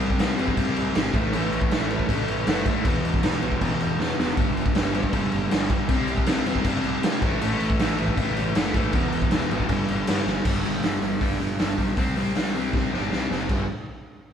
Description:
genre	punk rock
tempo	158 BPM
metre	4/4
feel	straight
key	G major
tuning	A4 = 439 Hz
part	overdriven semi-hollow guitar	riff	0.0-13.7 s	E2 to C4	-25 LUFS	equal	none
part	fuzz picked electric bass	bass	0.0-13.7 s	E1 to C3	-32 LUFS	equal	overdrive
part	raw garage drum kit	drums	0.0-13.6 s	crash cymbal, hi-hat, kick drum, snare drum	-24 LUFS	equal	none
room	light reverb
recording	band playing live in one room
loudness	-21 LUFS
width	side -8 dB against mid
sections	0.0-10.5 A section; 10.5-13.5 B section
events	drum fill 4.0-4.4, 10.3, 12.7-13.5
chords	0.0 C5; 1.2 A5; 2.9 E5; 4.4 G5; 5.9 C5; 7.2 A5; 8.9 E5; 9.7 G5; 12.0 C5; 13.5 G5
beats	0.21 0.59 0.97 | 1.35 1.73 2.10 2.48 | 2.86 3.24 3.62 4.00 | 4.38 4.76 5.14 5.52 | 5.90 6.28 6.66 7.04 | 7.42 7.80 8.18 8.56 | 8.94 9.32 9.70 10.08 | 10.46 10.84 11.22 11.60 | 11.98 12.36 12.74 13.12 | 13.50

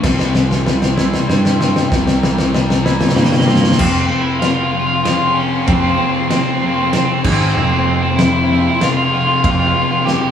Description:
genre	post-rock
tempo	96 BPM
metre	3/4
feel	straight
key	F harmonic minor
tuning	A4 = 440 Hz
part	rich studio string section	sustained chords	0.0-10.3 s	F3 to Eb6	-26 LUFS	equal	none
part	twangy electric guitar	arpeggios	0.0-3.8 s	C3 to E4	-24 LUFS	equal	none
part	thick fuzz guitar	riff	0.0-10.3 s	F2 to C4	-18 LUFS	left 2 dB	distortion
part	fuzz picked electric bass	bass	0.0-9.7 s	C2 to Ab2	-18 LUFS	equal	overdrive
part	loose indie drum kit	drums	0.0-10.2 s	crash cymbal, kick drum, ride cymbal, snare drum	-18 LUFS	equal	none
part	electric guitar at the edge of break-up	melody	3.2-10.3 s	Bb3 to G4	-18 LUFS	right 1 dB	spring reverb
room	wet large studio reverb, RT60 0.9 s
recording	band playing live in one room, small room ambience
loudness	-12 LUFS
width	side -8 dB against mid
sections	0.0-3.8 A section; 3.8-10.3 B section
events	build-up 0.0-3.8; drum fill 0.0-3.8, 10.1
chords	0.0 C; 3.8 Fmadd9; 7.2 Ab5; 7.6 Fmadd9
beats	| 0.04 0.66 1.29 | 1.91 2.54 3.17 | 3.79 4.42 5.05 | 5.67 6.30 6.93 | 7.55 8.18 8.81 | 9.43 10.06

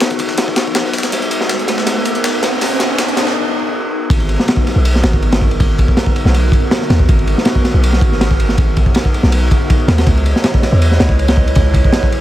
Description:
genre	drum and bass, jungle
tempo	161 BPM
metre	4/4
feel	straight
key	G# minor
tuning	A4 = 440 Hz
part	breakbeat sampler-style drum kit	drums	0.0-3.4 s	hi-hat, snare drum	-22 LUFS	left 2 dB	high-pass filter on hats, high-pass filter on snare
part	crunchy breakbeat drum kit	drums	0.0-12.2 s	kick drum, ride cymbal, snare drum	-14 LUFS	equal	high-pass filter on kick, high-pass filter on cymbals, high-pass filter on snare, high-pass filter on room
part	riser	sound effects	0.4-3.4 s	none	-22 LUFS	right 1 dB	none
part	warm 808-style bass	bass	4.1-11.8 s	G#1 to E2	-13 LUFS	equal	none
room	studio reverb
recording	none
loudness	-11 LUFS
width	side -13 dB against mid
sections	0.0-4.1 A section; 4.1-12.2 B section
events	build-up 0.0-4.1; riser 0.4-3.4; drum fill 1.1-3.4; break 3.4-4.1; drop 4.1-12.2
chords	none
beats	0.01 0.38 0.75 | 1.12 1.50 1.87 2.24 | 2.61 2.99 3.36 3.73 | 4.11 4.48 4.85 5.22 | 5.59 5.97 6.34 6.71 | 7.09 7.46 7.83 8.20 | 8.58 8.95 9.32 9.70 | 10.07 10.44 10.81 11.19 | 11.56 11.93

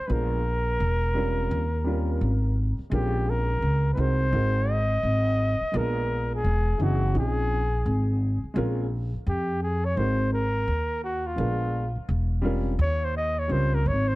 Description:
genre	hip hop, jazz-hop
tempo	85 BPM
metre	4/4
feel	swing 63% on 16ths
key	Bb dorian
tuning	A4 = 444 Hz
part	breathy flugelhorn	melody	0.0-14.2 s	F4 to Eb5	-29 LUFS	equal	none
part	dark upright piano	accompaniment	0.1-13.8 s	E3 to Bb4	-31 LUFS	equal	none
part	upright bass	bass	0.1-14.2 s	E1 to F2	-25 LUFS	equal	none
room	studio ambience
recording	dark, warm production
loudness	-23 LUFS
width	side -19 dB against mid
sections	0.0-8.6 A section; 8.6-14.2 B section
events	flugelhorn solo 8.6-14.2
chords	0.1 Bb7b9; 0.8 Edim7; 1.5 Eb13; 2.9 Bbm9; 4.3 Ab9; 5.7 Bb7b9; 6.4 Eadd9; 7.2 Bbm11; 8.6 Bbm9; 10.0 Ab9; 11.4 Bb7b9; 12.1 Edim7; 12.8 Eb13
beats	| 0.09 0.80 1.50 2.21 | 2.92 3.62 4.33 5.03 | 5.74 6.44 7.15 7.86 | 8.56 9.27 9.97 10.68 | 11.38 12.09 12.80 13.50

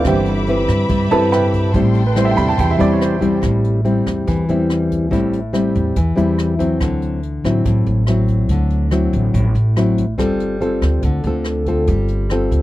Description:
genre	bossa nova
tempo	142 BPM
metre	4/4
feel	straight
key	A minor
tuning	A4 = 439 Hz
part	nylon-string guitar	accompaniment	0.0-12.6 s	A2 to B4	-17 LUFS	left 1 dB	none
part	warm baby grand piano	accompaniment	0.0-3.5 s	C3 to B5	-20 LUFS	right 5 dB	none
part	rich studio string section	sustained chords	0.0-3.4 s	A4 to D6	-27 LUFS	left 3 dB	none
part	upright bass	bass	0.0-12.6 s	G1 to G2	-19 LUFS	equal	none
part	jazz brush drum kit	drums	0.0-12.6 s	hi-hat, kick drum, rim click	-25 LUFS	equal	none
room	little or no reverb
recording	dry, close 1970s-style studio recording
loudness	-14 LUFS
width	side -15 dB against mid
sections	0.0-3.4 A section; 3.4-12.6 B section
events	grand piano solo 0.0-3.4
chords	0.1 Cmaj7/G; 1.7 Am7; 6.8 D9; 10.2 G9sus4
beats	| 0.06 0.48 0.90 1.32 | 1.75 2.17 2.59 3.01 | 3.43 3.85 4.28 4.70 | 5.12 5.54 5.96 6.39 | 6.81 7.23 7.65 8.08 | 8.50 8.92 9.34 9.77 | 10.19 10.61 11.03 11.45 | 11.88 12.30

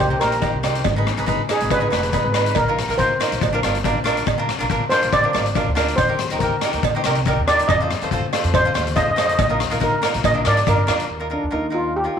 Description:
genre	calypso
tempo	140 BPM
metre	4/4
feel	straight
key	Eb major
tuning	A4 = 440 Hz
part	steel pan	melody	0.0-12.2 s	D4 to Eb5	-21 LUFS	equal	tape echo
part	upright bass	bass	0.0-12.2 s	F1 to Ab2	-25 LUFS	right 1 dB	none
part	cavaquinho	accompaniment	0.1-12.2 s	D4 to C5	-24 LUFS	equal	none
part	street-band drum kit	drums	0.2-11.1 s	hi-hat, kick drum, rim click	-23 LUFS	left 6 dB	none
part	cowbell	percussion	0.2-11.0 s	none	-25 LUFS	right 14 dB	none
room	light reverb, small room ambience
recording	1960s-style stereo with parts hard left and right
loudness	-17 LUFS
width	side -8 dB against mid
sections	0.0-11.1 A section; 11.1-12.2 B section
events	steel pan solo 0.0-11.1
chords	0.0 Cm7; 0.9 Abm6; 2.6 Bbsus4; 3.4 Bb; 4.3 Bb7; 6.0 Eb6; 7.7 F7; 9.4 Bbsus4; 10.2 Bb7; 11.1 Ebsus2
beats	0.00 0.43 | 0.85 1.28 1.71 2.14 | 2.56 2.99 3.42 3.85 | 4.27 4.70 5.13 5.55 | 5.98 6.41 6.83 7.26 | 7.69 8.11 8.54 8.97 | 9.39 9.82 10.25 10.68 | 11.10 11.53 11.96

